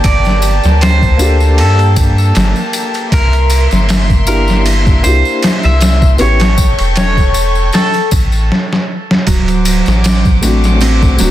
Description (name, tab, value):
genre	trip hop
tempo	78 BPM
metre	4/4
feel	swing 55% on 16ths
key	unclear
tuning	A4 = 440 Hz
part	felt-muted upright piano	accompaniment	0.0-11.3 s	A3 to Bb4	-18 LUFS	left 2 dB	tremolo
part	rich studio violin section	sustained chords	0.0-11.3 s	Bb3 to D6	-21 LUFS	left 2 dB	vintage 12-bit sampler grit
part	soft dub sub bass	bass	0.0-11.3 s	D1 to G2	-12 LUFS	equal	none
part	trip hop sampler-style drum kit	drums	0.0-11.3 s	hi-hat, kick drum, ride cymbal, snare drum	-14 LUFS	equal	overdrive
part	tambourine	percussion	0.0-11.3 s	none	-25 LUFS	left 5 dB	none
part	electric guitar at the edge of break-up	melody	0.1-8.1 s	A4 to E5	-17 LUFS	equal	harmonic tremolo, tape echo
part	nylon-string guitar	arpeggios	9.3-11.3 s	F#3 to C4	-16 LUFS	right 6 dB	tape echo
room	small room reverb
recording	dense, heavily limited modern master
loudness	-9 LUFS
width	side -13 dB against mid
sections	0.0-9.3 A section; 9.3-11.3 B section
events	drum fill 8.5-9.3; stop 8.5-9.3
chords	0.0 Gmadd9; 3.1 C7; 6.2 A7; 9.3 D7